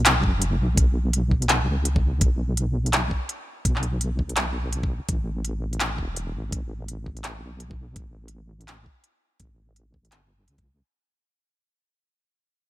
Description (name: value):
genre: half-time drum and bass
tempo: 167 BPM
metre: 4/4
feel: swing 59% on 16ths, half-time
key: unclear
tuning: A4 = 440 Hz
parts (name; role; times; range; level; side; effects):
- deep soft wobble bass; bass; 0.0-10.8 s; E1 to C#2; -25 LUFS; equal; chorus
- organic electronic drum kit; drums; 0.1-10.6 s; handclaps, hi-hat; -24 LUFS; equal; none
- electronic kick drum; drums; 0.2-10.6 s; none; -24 LUFS; equal; none
room: little or no reverb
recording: none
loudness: -22 LUFS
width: side -15 dB against mid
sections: 0.0-10.8 A section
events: fade-out 0.0-10.8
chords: none